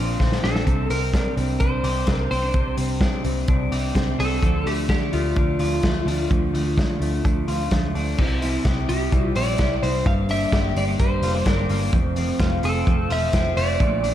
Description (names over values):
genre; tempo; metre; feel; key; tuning
jangly indie pop; 128 BPM; 4/4; straight; unclear; A4 = 435 Hz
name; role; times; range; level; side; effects
fingerpicked steel-string acoustic guitar; accompaniment; 0.0-14.1 s; F2 to E4; -29 LUFS; right 5 dB; none
electric guitar through a small old amp; arpeggios; 0.0-14.1 s; F2 to G4; -27 LUFS; left 3 dB; lush chorus, ping-pong delay
vintage muted picked electric bass; bass; 0.0-14.1 s; E1 to D2; -25 LUFS; equal; none
vintage drum kit; drums; 0.2-14.1 s; crash cymbal, hi-hat, kick drum, snare drum; -23 LUFS; equal; none
lightly driven lead guitar; melody; 0.4-14.1 s; F4 to F5; -26 LUFS; equal; ping-pong delay
room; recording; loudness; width
moderate plate reverb, RT60 1.9 s, small room ambience; dreamy mix soaked in reverb; -19 LUFS; side -11 dB against mid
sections
0.0-8.2 A section; 8.2-14.1 B section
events
drum fill 0.2-0.7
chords
0.0 Bbadd9; 0.7 Csus2; 4.4 Dm; 8.2 C; 10.1 Gm; 11.9 F